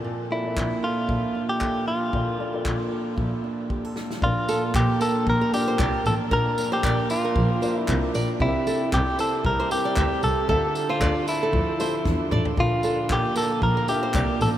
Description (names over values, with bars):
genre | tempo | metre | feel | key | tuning
acoustic pop | 115 BPM | 4/4 | swing 55% on 16ths | unclear | A4 = 440 Hz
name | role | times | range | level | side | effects
dark upright piano | accompaniment | 0.0-14.6 s | F3 to A5 | -34 LUFS | left 4 dB | none
fingerpicked steel-string acoustic guitar | accompaniment | 0.0-14.6 s | Bb2 to Bb4 | -28 LUFS | right 3 dB | none
direct-recorded clean electric guitar | melody | 0.3-14.5 s | E4 to Bb4 | -26 LUFS | equal | none
dark double bass | bass | 0.6-14.5 s | A1 to E2 | -26 LUFS | equal | none
natural country drum kit | drums | 0.6-14.5 s | handclaps, kick drum, snare drum, tambourine, toms | -30 LUFS | equal | none
nylon-string guitar | arpeggios | 4.5-14.5 s | A4 to E5 | -30 LUFS | right 1 dB | none
room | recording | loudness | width
wet huge ambient reverb, RT60 7.9 s | in a vast, echoing space | -21 LUFS | side -12 dB against mid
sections
0.0-4.2 A section; 4.2-14.6 B section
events
drum fill 3.2-4.2, 12.1-12.6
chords
0.0 Bbmaj7; 4.2 Bb; 8.4 C; 10.5 Dmadd9; 12.6 Bb